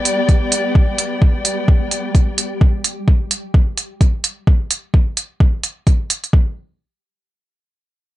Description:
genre	minimal techno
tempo	129 BPM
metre	4/4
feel	swing 59% on 16ths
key	E minor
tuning	A4 = 438 Hz
part	dark chamber string section	texture	0.0-2.6 s	B3 to G5	-22 LUFS	left 2 dB	sidechain pumping
part	flickering grainy texture	texture	0.0-2.6 s	G3 to G4	-28 LUFS	equal	built-in reverb, sidechain pumping
part	electronic hi-hat	drums	0.1-6.3 s	none	-18 LUFS	right 3 dB	none
part	electronic kick drum	drums	0.3-6.4 s	none	-12 LUFS	equal	none
room	light reverb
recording	echo-heavy mix, nothing above 10.4 kHz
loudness	-14 LUFS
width	side -16 dB against mid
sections	0.0-6.3 A section; 6.3-8.2 B section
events	none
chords	0.0 Em (rootless); 6.3 N.C.

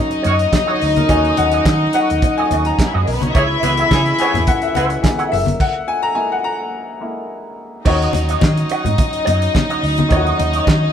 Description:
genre	disco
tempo	107 BPM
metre	4/4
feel	straight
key	unclear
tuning	A4 = 439 Hz
part	rich studio string section	second line	0.0-10.9 s	E3 to E5	-19 LUFS	left 2 dB	none
part	clear baby grand piano	accompaniment	0.0-10.9 s	D#3 to A#5	-22 LUFS	left 3 dB	none
part	mellow French horn section	sustained chords	0.0-10.9 s	C#3 to A#4	-27 LUFS	right 1 dB	none
part	electric guitar with an envelope filter	accompaniment	0.1-10.9 s	F#4 to F#5	-24 LUFS	right 5 dB	wah
part	damped 70s drum kit	drums	0.1-10.8 s	crash cymbal, handclaps, hi-hat, kick drum, snare drum	-18 LUFS	right 1 dB	none
part	clear horn section	stabs	0.2-4.9 s	C#4 to C#5	-23 LUFS	right 2 dB	none
part	hollow-body short-scale fingered electric bass	bass	0.2-10.9 s	F#1 to D#3	-20 LUFS	equal	none
part	congas	percussion	0.3-10.8 s	none	-25 LUFS	left 4 dB	none
room	moderate stone room reverb, RT60 1.2 s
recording	band playing live in one room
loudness	-14 LUFS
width	side -8 dB against mid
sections	0.0-7.9 A section; 7.9-10.9 B section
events	grand piano solo 0.0-7.9; stop 5.6-7.9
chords	0.0 D#m7; 3.4 C#m7; 5.3 F#7; 7.9 D#m7

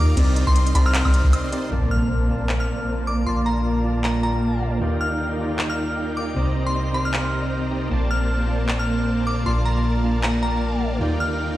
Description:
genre	future bass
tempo	155 BPM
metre	4/4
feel	swing 56% on 16ths, half-time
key	Bb major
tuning	A4 = 440 Hz
part	glassy synth bell	melody	0.0-11.3 s	Bb5 to F6	-28 LUFS	equal	chorus, tape echo
part	barky tine electric piano	accompaniment	0.0-11.6 s	Bb2 to D6	-27 LUFS	right 1 dB	overdrive
part	dense compressed supersaw	riff	0.0-11.6 s	Bb3 to C6	-26 LUFS	equal	low-pass filter
part	long sustained 808-style bass	bass	0.0-11.6 s	Bb1 to Eb2	-22 LUFS	equal	none
part	trap drum kit	drums	0.2-10.3 s	crash cymbal, handclaps, hi-hat, woodblock	-28 LUFS	equal	none
part	shimmering ambient pad	sustained chords	2.9-11.6 s	D3 to F4	-36 LUFS	equal	none
part	impact	sound effects	1.7-3.3 s	none	-28 LUFS	equal	none
room	digital ambience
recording	played on a big sound system in a bare room, stone room reverb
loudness	-19 LUFS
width	side -15 dB against mid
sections	0.0-1.7 A section; 1.7-11.6 B section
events	drop 0.0-1.7; break 1.3-1.7; impact 1.7-3.3; filter sweep on supersaw synth 1.7-11.6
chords	0.2 Cm7; 1.7 Bbmaj7; 3.3 Gm7/Bb; 4.8 Ebmaj7; 6.4 Cm7; 7.9 Bbmaj7; 9.5 Gm7/Bb; 11.0 Ebmaj7

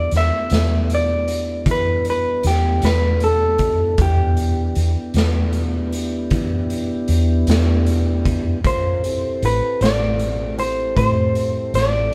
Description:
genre	slow blues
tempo	52 BPM (dotted quarters)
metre	12/8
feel	straight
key	E minor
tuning	A4 = 440 Hz
part	electric guitar through a small old amp	melody	0.0-12.1 s	G4 to E5	-23 LUFS	equal	none
part	mellow tonewheel organ	sustained chords	0.0-12.1 s	G3 to A#4	-29 LUFS	equal	slow rotary speaker
part	vintage muted fingered electric bass	bass	0.0-12.1 s	A1 to E3	-22 LUFS	equal	none
part	raw garage drum kit	drums	0.1-11.9 s	hi-hat, kick drum, snare drum	-26 LUFS	equal	none
room	light reverb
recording	band playing live in one room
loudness	-19 LUFS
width	mono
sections	0.0-12.1 A section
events	none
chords	0.0 Em7; 8.6 Am7

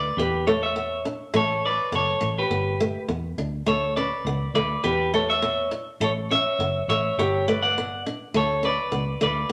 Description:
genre	highlife guitar band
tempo	103 BPM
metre	4/4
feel	swing 53% on 16ths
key	D major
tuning	A4 = 439 Hz
part	clean electric guitar	melody	0.0-9.5 s	G4 to F#5	-26 LUFS	equal	spring reverb
part	picked old ladder-braced acoustic guitar	accompaniment	0.0-9.5 s	A3 to D4	-30 LUFS	equal	none
part	fingered electric bass	bass	0.0-9.4 s	F#1 to E2	-32 LUFS	equal	none
room	moderate club reverb, RT60 0.8 s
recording	none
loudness	-24 LUFS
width	mono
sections	0.0-9.5 A section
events	none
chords	0.2 Em; 1.3 F#madd11; 2.5 G; 3.7 D5; 4.8 Em; 6.0 A; 7.2 G; 8.3 D5

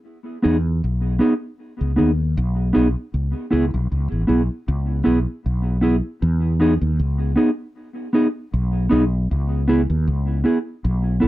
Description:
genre	roots reggae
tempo	78 BPM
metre	4/4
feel	straight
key	E major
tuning	A4 = 439 Hz
part	mellow electric guitar	accompaniment	0.4-11.3 s	B3 to A4	-20 LUFS	right 1 dB	tape echo
part	mellow fretless electric bass	bass	0.5-11.3 s	A1 to E2	-19 LUFS	equal	wide subtle chorus
room	light reverb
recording	none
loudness	-18 LUFS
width	side -16 dB against mid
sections	0.0-6.2 A section; 6.2-11.3 B section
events	none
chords	0.0 Emaj7 (rootless); 3.1 C#m7; 6.2 Emaj7; 9.3 C#m7

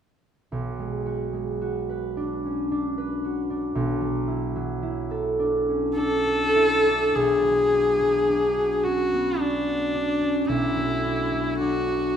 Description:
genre	classical, impressionist duo for viola and harp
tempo	54 BPM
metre	3/4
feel	uneven beats, rubato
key	B dorian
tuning	A4 = 440 Hz
part	concert harp	accompaniment	0.5-12.2 s	B1 to B4	-25 LUFS	right 1 dB	none
part	clear viola	melody	6.0-12.2 s	D4 to A4	-22 LUFS	left 2 dB	none
room	moderate scoring stage reverb, RT60 1.6 s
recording	dark, warm production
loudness	-22 LUFS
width	side -8 dB against mid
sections	0.5-7.1 A section; 7.1-12.2 B section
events	none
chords	0.5 Bm6; 3.8 Dadd9/B; 7.1 Bmadd9; 10.5 D69/B

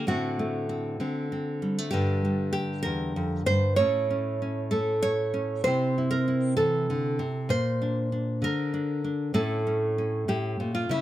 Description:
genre	folk, solo fingerstyle acoustic guitar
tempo	65 BPM (dotted quarters)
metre	6/8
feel	straight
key	unclear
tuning	A4 = 436 Hz
part	nylon-string guitar	solo	0.0-11.0 s	E2 to C#5	-25 LUFS	equal	none
room	little or no reverb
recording	close, detailed microphones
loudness	-25 LUFS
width	side -13 dB against mid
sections	0.0-11.0 A section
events	none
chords	0.1 D7/A; 1.9 Gm; 3.8 A; 5.6 C6; 7.5 Bb; 9.4 A

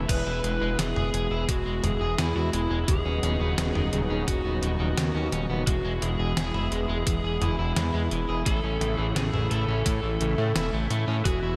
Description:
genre	synthwave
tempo	86 BPM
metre	4/4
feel	straight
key	E major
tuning	A4 = 440 Hz
part	lush unison pad	sustained chords	0.0-11.6 s	B2 to E4	-35 LUFS	equal	chorus, sidechain pumping
part	fat analog bass	bass	0.0-11.6 s	D#1 to A2	-30 LUFS	equal	tube saturation
part	lead guitar through a small cranked amp	melody	0.1-11.6 s	E4 to B4	-34 LUFS	equal	overdrive, diffuse ambient delay
part	electric guitar at the edge of break-up	arpeggios	0.1-11.6 s	C#3 to G#4	-36 LUFS	equal	diffuse ambient delay
part	detuned 8-bit digital drum machine	drums	0.1-11.4 s	crash cymbal, hi-hat, snare drum, toms	-34 LUFS	equal	none
part	electronic kick drum	drums	0.1-11.4 s	none	-29 LUFS	equal	none
room	moderate lush hall reverb, RT60 2.8 s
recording	dreamy mix soaked in reverb, faint mains hum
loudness	-26 LUFS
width	mono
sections	0.0-11.6 A section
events	none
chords	0.1 E; 2.9 Badd9/D#; 5.7 E; 8.5 A

